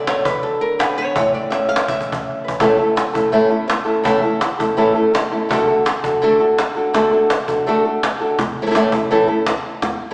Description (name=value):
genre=flamenco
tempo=166 BPM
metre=4/4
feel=straight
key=A major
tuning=A4 = 441 Hz
part: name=flamenco guitar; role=melody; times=0.0-10.1 s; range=A2 to F5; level=-18 LUFS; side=equal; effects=none
part: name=cajon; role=percussion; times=0.1-10.0 s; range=none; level=-24 LUFS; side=equal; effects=none
room=wet recital hall reverb, RT60 1.6 s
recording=recorded in a church or concert hall, small speaker sound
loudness=-17 LUFS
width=mono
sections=0.0-2.6 A section; 2.6-10.1 B section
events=nylon-string guitar solo 0.0-2.6; drum fill 1.5-2.6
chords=0.0 D; 1.2 A; 5.5 D; 8.4 A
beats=0.07 0.44 0.80 | 1.16 1.52 1.89 2.25 | 2.61 2.97 3.33 3.69 | 4.05 4.42 4.78 5.14 | 5.50 5.86 6.22 6.58 | 6.95 7.31 7.67 8.03 | 8.39 8.75 9.11 9.47 | 9.83